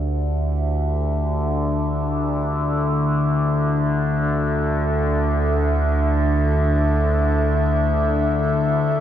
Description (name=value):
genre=dark ambient drone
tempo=free time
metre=none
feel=none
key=unclear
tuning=A4 = 440 Hz
part: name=dark analog pad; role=sustained chords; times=0.0-9.0 s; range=D4 to E5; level=-24 LUFS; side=equal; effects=chorus, shimmer reverb
part: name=overtone-sweeping drone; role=drone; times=0.0-9.0 s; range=D2 to D3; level=-19 LUFS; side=equal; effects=chorus, built-in reverb
part: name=bronze singing bowl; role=texture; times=0.0-9.0 s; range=G4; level=-45 LUFS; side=right 6 dB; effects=none
room=wet cathedral reverb, RT60 5.8 s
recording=dark, warm production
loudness=-18 LUFS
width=side -10 dB against mid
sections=0.0-9.0 A section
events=none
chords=0.0 Dsus2